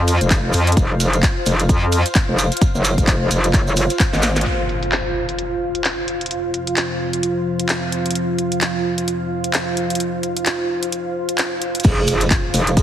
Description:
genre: bass house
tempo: 130 BPM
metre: 4/4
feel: swing 58% on 16ths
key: unclear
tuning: A4 = 440 Hz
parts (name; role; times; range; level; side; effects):
- metallic wobble bass; bass; 0.0-4.4, 11.8-12.8 s; F1 to F2; -17 LUFS; equal; chorus, sidechain pumping
- ethereal airy pad; texture; 0.0-12.8 s; F4 to F5; -24 LUFS; right 1 dB; ensemble chorus, built-in reverb, sidechain pumping
- garage drum kit; drums; 0.1-12.8 s; crash cymbal, handclaps, hi-hat, snare drum; -23 LUFS; equal; low-pass filter on hats, low-pass filter on snare, low-pass filter on cymbals, low-pass filter on room
- maracas; percussion; 0.1-4.4, 11.8-12.8 s; none; -28 LUFS; right 4 dB; none
- electronic kick drum; drums; 0.3-4.1, 11.8-12.8 s; none; -16 LUFS; equal; none
- deep dark ambient pad; sustained chords; 6.1-11.8 s; F3 to F5; -25 LUFS; equal; chorus, built-in reverb, vintage 12-bit sampler grit, sidechain pumping
- impact; sound effects; 4.5-6.3, 11.8-12.8 s; none; -27 LUFS; equal; none
- vibraphone with soft mallets; melody; 11.8-12.8 s; Ab4; -25 LUFS; right 5 dB; none
room: moderate lush hall reverb, RT60 2.3 s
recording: heavily compressed radio sound, multiband compression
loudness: -16 LUFS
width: side -10 dB against mid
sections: 0.0-4.5 A section; 4.5-11.8 B section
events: drum fill 4.1-4.5; band accent 4.3; impact 4.5-6.3, 11.8-12.8; filter sweep on ambient pad 4.5-11.8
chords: 0.0 F5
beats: 0.31 | 0.77 1.23 1.69 2.15 | 2.62 3.08 3.54 4.00 | 4.46 4.92 5.38 5.85 | 6.31 6.77 7.23 7.69 | 8.15 8.62 9.08 9.54 | 10.00 10.46 10.92 11.38 | 11.85 12.31 12.77

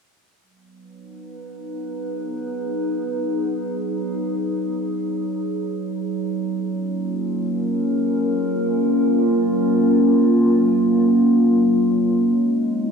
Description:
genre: ambient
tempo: free time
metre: none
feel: none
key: G# dorian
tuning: A4 = 440 Hz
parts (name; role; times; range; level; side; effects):
- warbly tape-like pad; sustained chords; 1.1-12.9 s; F#3 to B4; -18 LUFS; equal; chorus, built-in reverb
room: wet echo chamber reverb, RT60 1.9 s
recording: none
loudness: -18 LUFS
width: side -6 dB against mid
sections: 0.4-12.9 A section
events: fade-in on ambient pad 0.4-12.9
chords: 0.4 G#m7; 6.3 F#maj7; 12.2 G#m7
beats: free time

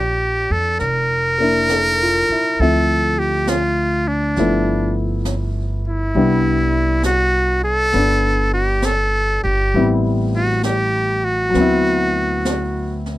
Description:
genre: jazz ballad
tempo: 67 BPM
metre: 4/4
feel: swing 66% on 8ths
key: unclear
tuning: A4 = 435 Hz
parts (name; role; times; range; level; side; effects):
- trumpet with metal mute; melody; 0.0-13.1 s; D4 to Bb4; -18 LUFS; equal; none
- warm baby grand piano; accompaniment; 0.0-13.2 s; F3 to E5; -21 LUFS; left 2 dB; none
- upright bass; bass; 0.0-13.2 s; F1 to F2; -21 LUFS; equal; none
- jazz brush drum kit; drums; 0.8-13.2 s; brushed snare drum, hi-hat, snare drum; -27 LUFS; equal; none
room: little or no reverb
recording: none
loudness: -15 LUFS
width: side -16 dB against mid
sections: 0.0-13.2 A section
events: none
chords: 0.0 Bbadd9; 2.6 Dm9; 4.4 G13; 6.2 Cmaj9; 9.7 Am7; 11.5 D13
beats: 0.80 1.70 | 2.59 3.49 4.38 5.27 | 6.15 7.05 7.94 8.84 | 9.74 10.64 11.54 12.46

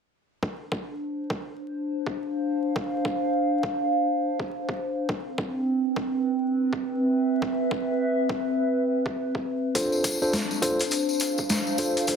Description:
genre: glitch hop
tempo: 103 BPM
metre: 4/4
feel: swing 62% on 16ths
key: D dorian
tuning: A4 = 440 Hz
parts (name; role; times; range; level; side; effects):
- electronic kick drum; drums; 0.4-12.2 s; none; -33 LUFS; equal; overdrive, high-pass filter on kick, high-pass filter on room
- warbly tape-like pad; texture; 0.9-12.2 s; C4 to F5; -25 LUFS; right 1 dB; chorus, built-in reverb, sidechain pumping
- mellow tine electric piano; stabs; 9.7-12.2 s; D4 to C5; -26 LUFS; equal; sidechain pumping, dub echo
- boom bap sampler-style drum kit; drums; 9.8-12.2 s; hi-hat, snare drum; -28 LUFS; left 1 dB; overdrive
- tambourine; percussion; 9.8-12.2 s; none; -31 LUFS; left 4 dB; none
room: wet lush hall reverb, RT60 2.0 s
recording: dense, heavily limited modern master, vinyl crackle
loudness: -24 LUFS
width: side -6 dB against mid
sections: 0.4-12.2 A section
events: none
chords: 0.4 Dm7; 5.1 Cmaj7; 9.8 Dm7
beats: | 0.43 1.01 1.60 2.18 | 2.76 3.34 3.93 4.51 | 5.09 5.67 6.26 6.84 | 7.42 8.00 8.59 9.17 | 9.75 10.33 10.92 11.50 | 12.08

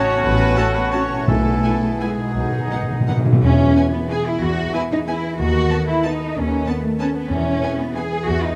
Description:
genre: classical, orchestral ballroom waltz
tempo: 158-204 BPM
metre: 3/4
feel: rubato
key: E major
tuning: A4 = 440 Hz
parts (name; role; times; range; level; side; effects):
- clear clarinet; second line; 0.0-3.2 s; D#4 to F#4; -36 LUFS; equal; none
- clear oboe; second line; 0.0-3.2 s; G#4 to C#5; -32 LUFS; equal; none
- mellow hollow concert flute; second line; 0.0-3.2 s; F#5 to A5; -32 LUFS; equal; none
- rich symphonic violin section; second line; 0.0-8.0 s; G#4 to C#5; -34 LUFS; equal; none
- dark bassoon; accompaniment; 0.0-3.2 s; B3 to C#4; -29 LUFS; equal; none
- mellow French horn section; sustained chords; 0.0-8.1 s; G#3 to A4; -35 LUFS; equal; none
- warm trombone section; sustained chords; 0.0-3.3 s; F#2 to C#4; -34 LUFS; equal; none
- concert harp; arpeggios; 0.0-8.6 s; A2 to A5; -30 LUFS; equal; none
- clear trumpet; stabs; 0.0-3.2 s; D#4 to F#4; -29 LUFS; equal; none
- dark symphonic cello section; bass; 0.0-8.6 s; G#3 to G#4; -24 LUFS; equal; none
- clear symphonic double bass section; bass; 0.2-8.5 s; A1 to E2; -26 LUFS; equal; none
- clear symphonic violin section; melody; 0.6-8.0 s; F#5 to A5; -38 LUFS; equal; none
- rich symphonic viola section; accompaniment; 0.6-8.0 s; B3 to F#4; -35 LUFS; equal; none
- timpani; percussion; 1.3-3.4, 7.3-7.8 s; E2 to B2; -23 LUFS; equal; none
room: moderate concert hall reverb, RT60 2.0 s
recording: none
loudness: -19 LUFS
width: mono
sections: 0.0-3.4 A section; 3.4-8.6 B section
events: timpani fill 2.4-3.4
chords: 0.0 F#m/A; 1.3 E/B; 2.4 B; 3.4 E; 5.4 B7/D#; 7.3 E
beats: | 0.24 0.58 0.94 | 1.28 1.64 2.01 | 2.36 2.71 3.08 | 3.42 3.75 4.10 | 4.41 4.73 5.07 | 5.39 5.70 6.04 | 6.35 6.67 7.00 | 7.31 7.62 7.96 | 8.27

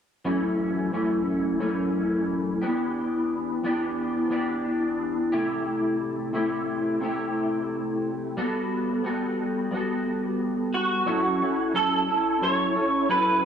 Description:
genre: indie pop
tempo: 89 BPM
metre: 4/4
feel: straight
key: unclear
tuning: A4 = 440 Hz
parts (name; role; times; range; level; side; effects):
- electric guitar through a small old amp; accompaniment; 0.2-13.4 s; F#2 to A4; -24 LUFS; left 1 dB; ensemble chorus, warbly pitch drift, plate reverb
- electric guitar through a small old amp; melody; 10.7-13.4 s; F#4 to C#5; -23 LUFS; right 2 dB; ensemble chorus, slapback echo
room: wet small room ambience, RT60 0.5 s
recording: dark, warm production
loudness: -23 LUFS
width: side -8 dB against mid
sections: 0.3-11.1 A section; 11.1-13.4 B section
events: none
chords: 0.3 F#m7; 2.6 Em7; 5.3 C6; 8.4 Gmaj9; 11.1 F#m7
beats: | 0.26 0.93 1.61 2.28 | 2.96 3.63 4.31 4.99 | 5.66 6.34 7.01 7.69 | 8.37 9.04 9.72 10.39 | 11.07 11.74 12.42 13.09

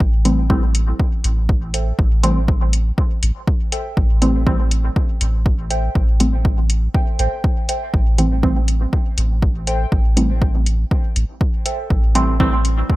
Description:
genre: dub techno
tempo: 121 BPM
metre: 4/4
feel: straight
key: A minor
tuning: A4 = 440 Hz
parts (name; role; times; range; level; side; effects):
- soft dub sub bass; bass; 0.0-12.8 s; A1; -18 LUFS; equal; sidechain pumping
- electronic kick drum; drums; 0.0-13.0 s; none; -18 LUFS; equal; overdrive
- filtered dub chord stab; stabs; 0.3-12.6 s; E3 to C4; -21 LUFS; right 1 dB; chorus, phaser, sidechain pumping, dub echo
- electronic hi-hat; drums; 0.3-12.7 s; none; -24 LUFS; left 2 dB; none
- warbly dusty pluck; riff; 1.7-11.8 s; A4 to G5; -29 LUFS; right 1 dB; wide subtle chorus, sidechain pumping, dub echo
room: digital ambience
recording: bright 1980s-style digital production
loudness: -15 LUFS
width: side -18 dB against mid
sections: 0.0-13.0 A section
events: filter sweep on synth stab 0.0-13.0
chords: 0.0 Am7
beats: 0.00 0.50 0.99 | 1.49 1.99 2.48 2.98 | 3.48 3.97 4.47 4.96 | 5.46 5.95 6.45 6.95 | 7.44 7.94 8.43 8.93 | 9.43 9.92 10.42 10.91 | 11.41 11.90 12.40 12.90

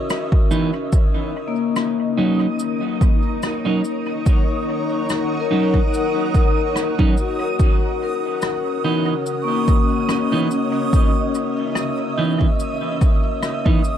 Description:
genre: ambient dub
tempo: 72 BPM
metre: 4/4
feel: swing 55% on 16ths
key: C# dorian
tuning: A4 = 441 Hz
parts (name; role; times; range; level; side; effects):
- granular cloud pad; sustained chords; 0.0-14.0 s; C#4 to F#5; -25 LUFS; equal; built-in reverb
- vibraphone with medium mallets; arpeggios; 0.0-14.0 s; A#3 to C#6; -24 LUFS; left 7 dB; dub echo
- cabasa and rim click; drums; 0.1-14.0 s; none; -29 LUFS; left 1 dB; dub echo
- electronic kick drum; drums; 0.3-13.8 s; none; -17 LUFS; equal; none
- clean electric guitar; stabs; 0.5-13.8 s; E3 to D#4; -24 LUFS; right 3 dB; dub echo
- backwards swelling texture; texture; 2.3-14.0 s; D#6; -31 LUFS; right 5 dB; built-in reverb
room: studio ambience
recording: dark, warm production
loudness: -17 LUFS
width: side -10 dB against mid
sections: 0.0-14.0 A section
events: none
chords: 0.0 C#m9; 0.9 D#m7; 7.6 C#m9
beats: 0.10 | 0.93 1.76 2.60 3.43 | 4.26 5.10 5.93 6.76 | 7.60 8.43 9.27 10.10 | 10.93 11.77 12.60 13.43

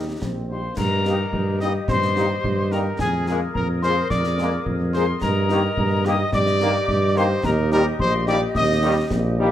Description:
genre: military-style march for wind band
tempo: 108 BPM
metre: 2/4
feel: straight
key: Eb major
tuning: A4 = 440 Hz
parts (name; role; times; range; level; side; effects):
- warm cornet; melody; 0.0-9.1 s; Ab4 to Eb5; -26 LUFS; right 2 dB; none
- mellow woodwind section; second line; 0.0-9.5 s; G4 to Eb5; -29 LUFS; left 2 dB; none
- mellow French horn section; accompaniment; 0.0-9.5 s; G3 to Ab4; -28 LUFS; left 4 dB; none
- warm trombone section; sustained chords; 0.0-9.5 s; Eb3 to Eb4; -28 LUFS; right 1 dB; none
- mellow tuba; bass; 0.0-9.5 s; Bb1 to G2; -22 LUFS; right 1 dB; none
- concert snare drum, concert bass drum and clash cymbals; drums; 0.2-9.3 s; none; -29 LUFS; left 1 dB; none
- wooden piccolo; second line; 0.5-9.1 s; Ab5 to Eb6; -27 LUFS; left 4 dB; none
room: moderate large studio reverb, RT60 1.0 s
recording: none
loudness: -18 LUFS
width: side -11 dB against mid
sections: 0.8-9.5 A section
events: none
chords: 0.0 Eb; 0.8 Eb/G; 3.0 Bb7/F; 5.2 Eb/G; 7.4 Eb/Bb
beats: 0.22 | 0.77 1.33 | 1.89 2.44 | 3.00 3.55 | 4.11 4.66 | 5.22 5.77 | 6.33 6.89 | 7.44 8.00 | 8.55 9.11

